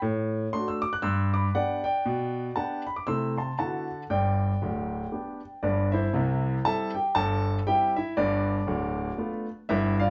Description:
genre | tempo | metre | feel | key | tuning
jazz, stride piano | 118 BPM | 4/4 | swing 58% on 8ths | G major, C major from 6.1 s | A4 = 440 Hz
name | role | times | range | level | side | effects
clear concert grand piano | solo | 0.0-10.1 s | D1 to F#6 | -27 LUFS | equal | none
room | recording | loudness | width
wet studio ambience, RT60 0.5 s | band playing live in one room, nothing above 7.7 kHz | -28 LUFS | mono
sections
0.0-6.1 A section; 6.1-10.1 B section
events
none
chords
0.0 D/A; 1.0 G; 2.1 G/B; 3.1 Am/C; 3.6 D69; 4.1 G; 6.1 C; 8.2 G9

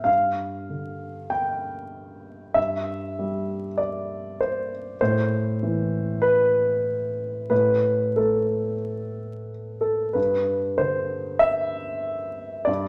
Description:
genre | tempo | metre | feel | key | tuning
neoclassical minimalist piano | 89-100 BPM | 4/4 | rubato | unclear | A4 = 439 Hz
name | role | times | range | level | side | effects
dark grand piano | solo | 0.0-12.9 s | G2 to G5 | -25 LUFS | equal | none
room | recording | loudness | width
wet large studio reverb, RT60 1.0 s | vinyl crackle | -25 LUFS | mono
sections
0.0-10.2 A section; 10.2-12.9 A section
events
none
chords
0.1 G5; 5.0 Am; 10.2 Gsus4

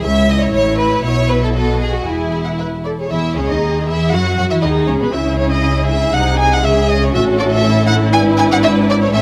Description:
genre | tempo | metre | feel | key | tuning
quick classical-period movement for string orchestra | 119 BPM | 2/4 | straight | E major | A4 = 435 Hz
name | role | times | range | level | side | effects
dark studio violin section | melody | 0.0-9.2 s | B4 to G#5 | -22 LUFS | equal | none
rich studio violin section | second line | 0.0-9.2 s | B3 to E5 | -22 LUFS | equal | none
warm studio viola section | accompaniment | 0.0-9.2 s | C#4 to B4 | -22 LUFS | equal | none
rich studio double bass section | bass | 0.0-9.2 s | E1 to F#2 | -22 LUFS | equal | none
warm studio cello section | bass | 0.0-9.2 s | C#2 to F#3 | -21 LUFS | equal | none
room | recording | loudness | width
moderate scoring stage reverb, RT60 1.6 s | close, detailed microphones | -15 LUFS | mono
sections
0.0-3.1 A section; 3.1-9.2 B section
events
none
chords
0.0 C#m; 0.5 A; 1.0 E5/B; 1.5 B7; 2.1 E; 4.1 Esus2/F#; 4.6 G#madd11; 5.1 C#m; 6.1 G#7/B#; 6.6 C#m; 7.1 A; 8.1 E7/G#

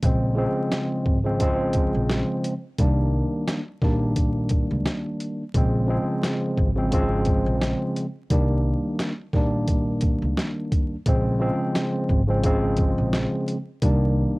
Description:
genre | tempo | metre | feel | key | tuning
hip hop, boom-bap hip-hop | 87 BPM | 4/4 | swing 55% on 16ths | Bb dorian | A4 = 440 Hz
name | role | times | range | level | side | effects
tine electric piano | accompaniment | 0.0-14.4 s | Db3 to D4 | -24 LUFS | equal | fast stereo tremolo, high-pass filter, low-pass filter
upright bass | bass | 0.0-14.2 s | Ab1 to Db2 | -25 LUFS | equal | transformer saturation
boom bap sampler-style drum kit | drums | 0.0-14.0 s | hi-hat, kick drum, snare drum | -24 LUFS | equal | cassette tape
room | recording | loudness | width
light reverb | home recording on cassette, vinyl crackle | -21 LUFS | side -23 dB against mid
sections
0.0-11.1 A section; 11.1-14.4 A section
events
none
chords
0.0 Bbm9; 2.8 Cm9; 5.5 Bbm9; 8.3 Cm9; 11.1 Bbm9; 13.8 Cm9

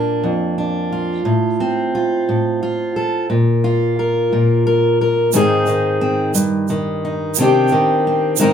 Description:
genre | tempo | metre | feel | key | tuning
acoustic folk duo or small band | 59 BPM (dotted quarters) | 6/8 | straight | unclear | A4 = 440 Hz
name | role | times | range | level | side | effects
fingerpicked steel-string acoustic guitar | accompaniment | 0.0-8.5 s | F2 to Bb4 | -15 LUFS | equal | none
tube shaker | percussion | 5.3-8.5 s | none | -21 LUFS | right 8 dB | none
room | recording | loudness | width
wet studio reverb, RT60 0.5 s | heard from further back in the room | -15 LUFS | side -8 dB against mid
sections
0.0-5.3 A section; 5.3-8.5 B section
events
none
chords
0.0 Bb; 1.3 F/A; 3.3 Bb5; 5.3 Ab; 6.3 Eb/G; 7.4 Cmadd9

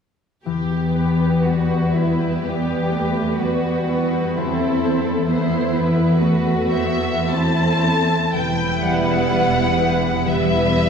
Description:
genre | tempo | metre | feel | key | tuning
classical, slow romantic movement for symphony orchestra | 52-68 BPM | 4/4 | rubato | E minor | A4 = 443 Hz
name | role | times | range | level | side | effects
dark studio violin section | melody | 0.4-10.9 s | G4 to A5 | -24 LUFS | left 1 dB | none
warm studio violin section | second line | 0.5-10.9 s | E4 to B4 | -25 LUFS | left 1 dB | none
dark studio viola section | accompaniment | 0.5-10.9 s | G3 to C4 | -24 LUFS | right 2 dB | none
concert harp | arpeggios | 0.5-10.9 s | E3 to C5 | -24 LUFS | left 6 dB | none
warm studio cello section | bass | 0.5-10.9 s | E2 | -22 LUFS | right 2 dB | none
rich studio double bass section | bass | 8.4-10.9 s | E1 | -26 LUFS | right 2 dB | none
room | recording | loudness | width
wet concert hall reverb, RT60 1.9 s | heard from further back in the room | -17 LUFS | side -6 dB against mid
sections
0.5-8.4 A section; 8.4-10.9 B section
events
none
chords
0.5 Em; 4.4 Am/E; 8.4 Em

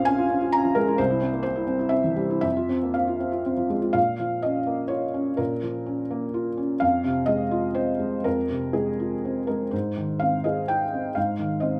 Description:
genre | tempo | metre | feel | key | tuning
neoclassical minimalist piano | 115-131 BPM | 3/4 | rubato | F minor | A4 = 440 Hz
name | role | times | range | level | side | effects
felt-muted upright piano | solo | 0.0-11.8 s | Bb1 to Bb5 | -25 LUFS | equal | none
room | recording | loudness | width
light reverb | none | -25 LUFS | mono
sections
0.0-4.0 A section; 4.0-11.8 B section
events
none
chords
0.0 Bbm7; 1.0 C; 2.4 Fm; 4.0 Bbm; 6.8 Fm; 9.7 Ab

